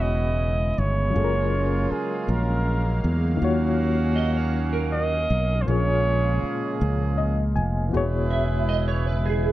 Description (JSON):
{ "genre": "slow six-eight R&B", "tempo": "53 BPM (dotted quarters)", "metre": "6/8", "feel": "straight", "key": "unclear", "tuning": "A4 = 444 Hz", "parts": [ { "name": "warm flugelhorn", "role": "melody", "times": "0.0-6.8 s", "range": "G#4 to D#5", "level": "-27 LUFS", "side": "right 1 dB", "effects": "none" }, { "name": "reed electric piano", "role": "accompaniment", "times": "0.0-9.5 s", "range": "A#2 to G#5", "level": "-29 LUFS", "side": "left 4 dB", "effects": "fast tremolo" }, { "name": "warm analog pad", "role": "sustained chords", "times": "0.0-9.5 s", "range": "C#3 to E#5", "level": "-32 LUFS", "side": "right 2 dB", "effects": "chorus" }, { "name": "clear horn section", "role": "stabs", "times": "0.0-9.5 s", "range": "A#3 to B4", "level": "-32 LUFS", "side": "right 5 dB", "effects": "none" }, { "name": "fretless electric bass", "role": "bass", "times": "0.0-9.5 s", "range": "E1 to E2", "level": "-23 LUFS", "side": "equal", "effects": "analog chorus" }, { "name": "clean electric guitar", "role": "second line", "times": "4.2-9.5 s", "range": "G#4 to E5", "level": "-29 LUFS", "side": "right 5 dB", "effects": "ensemble chorus" } ], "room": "little or no reverb", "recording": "none", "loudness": "-21 LUFS", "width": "side -15 dB against mid", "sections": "0.0-9.5 A section", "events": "reed electric piano fill 6.8-7.9", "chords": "0.0 E6; 1.1 F#maj9; 3.4 D#m9; 5.7 A#m7; 7.9 E6" }